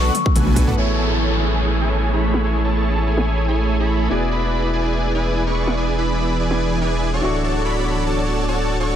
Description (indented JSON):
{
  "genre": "future bass",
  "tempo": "144 BPM",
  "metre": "4/4",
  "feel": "swing 53% on 16ths, half-time",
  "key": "A major",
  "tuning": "A4 = 441 Hz",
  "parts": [
    { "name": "ethereal airy pad", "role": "sustained chords", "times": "0.0-9.0 s", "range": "D3 to G#4", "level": "-27 LUFS", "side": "right 4 dB", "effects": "ensemble chorus, built-in reverb, phaser, sidechain pumping" },
    { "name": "dense compressed supersaw", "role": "riff", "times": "0.0-9.0 s", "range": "D4 to C#6", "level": "-22 LUFS", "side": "right 1 dB", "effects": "sidechain pumping, low-pass filter, ping-pong delay" },
    { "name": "saturated sub bass", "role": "bass", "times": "0.0-9.0 s", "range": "D1 to B1", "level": "-21 LUFS", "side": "equal", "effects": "sidechain pumping" },
    { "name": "big-room dance drum kit", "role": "drums", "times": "0.1-6.6 s", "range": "hi-hat, snare drum, toms", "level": "-27 LUFS", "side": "equal", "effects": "low-pass filter on hats, low-pass filter on cymbals, low-pass filter on snare, low-pass filter on toms" },
    { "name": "electronic kick drum", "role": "drums", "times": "0.3-0.7 s", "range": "none", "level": "-19 LUFS", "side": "equal", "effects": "none" },
    { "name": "clear grand piano", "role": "accompaniment", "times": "0.8-9.0 s", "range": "A3 to C#6", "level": "-28 LUFS", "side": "left 3 dB", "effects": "sidechain pumping, ping-pong delay" },
    { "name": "downlifter", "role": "sound effects", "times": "0.8-4.1 s", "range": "none", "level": "-28 LUFS", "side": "equal", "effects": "none" }
  ],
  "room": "light reverb",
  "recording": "none",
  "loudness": "-17 LUFS",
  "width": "side -10 dB against mid",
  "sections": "0.8-9.0 A section",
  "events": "drum fill 0.1-0.8; filter sweep on supersaw synth 0.8-9.0",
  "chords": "0.0 Bm7; 0.8 Amaj7; 4.1 E7; 7.2 Dmaj7"
}